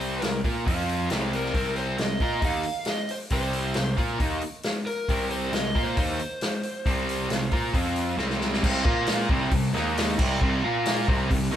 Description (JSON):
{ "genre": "blues rock power trio and southern rock", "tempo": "135 BPM", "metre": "4/4", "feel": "straight", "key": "C minor", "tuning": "A4 = 441 Hz", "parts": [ { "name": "overdriven slide guitar", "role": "melody", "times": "0.0-8.2 s", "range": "Bb4 to F5", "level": "-32 LUFS", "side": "equal", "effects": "none" }, { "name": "fuzz guitar", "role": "riff", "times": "0.0-11.6 s", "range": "C3 to Bb4", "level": "-27 LUFS", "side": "right 1 dB", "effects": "distortion" }, { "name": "fuzz picked electric bass", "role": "bass", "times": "0.0-11.6 s", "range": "C2 to Bb2", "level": "-30 LUFS", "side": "equal", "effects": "overdrive" }, { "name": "vintage drum kit", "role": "drums", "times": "0.0-11.4 s", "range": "crash cymbal, hi-hat, kick drum, snare drum", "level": "-27 LUFS", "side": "equal", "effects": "none" } ], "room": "moderate large studio reverb, RT60 1.0 s", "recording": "band playing live in one room", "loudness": "-23 LUFS", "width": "side -10 dB against mid", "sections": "0.0-8.6 A section; 8.6-11.6 B section", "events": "drum fill 8.2-8.6", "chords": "0.0 C5; 0.7 F5; 1.1 Cm; 7.7 F5; 8.2 C5; 8.9 Bb5; 9.3 C5; 9.7 Eb5; 10.2 C5; 10.6 Bb5; 11.1 C5" }